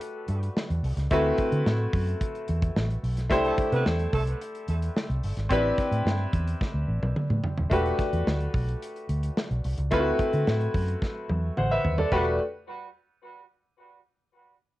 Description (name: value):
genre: polished 1980s jazz-funk pop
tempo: 109 BPM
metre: 4/4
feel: straight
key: E minor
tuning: A4 = 437 Hz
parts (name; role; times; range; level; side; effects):
- bright concert grand piano; accompaniment; 0.0-12.4 s; A3 to F#5; -28 LUFS; left 1 dB; wide subtle chorus, cassette tape
- modern studio drum kit; drums; 0.0-12.2 s; crash cymbal, hi-hat, kick drum, snare drum, toms; -30 LUFS; equal; cassette tape
- vintage muted fingered electric bass; bass; 0.3-12.4 s; D#1 to D3; -27 LUFS; equal; none
- mellow horn section; second line; 3.4-4.2, 12.1-12.3 s; G3 to B4; -36 LUFS; right 3 dB; cassette tape, analog delay
room: light reverb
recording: home recording on cassette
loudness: -24 LUFS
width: side -16 dB against mid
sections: 0.0-7.7 A section; 7.7-12.1 B section; 12.1-14.3 C section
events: drum fill 6.6-7.7, 11.0-12.1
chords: 0.0 Em11 (rootless); 1.1 D13; 3.3 C69; 5.5 Am11; 7.7 Em11; 9.9 D13; 12.1 Em11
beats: 0.01 0.56 | 1.11 1.66 2.21 2.76 | 3.31 3.86 4.41 4.96 | 5.51 6.06 6.61 7.16 | 7.71 8.27 8.81 9.37 | 9.92 10.47 11.02 11.57 | 12.12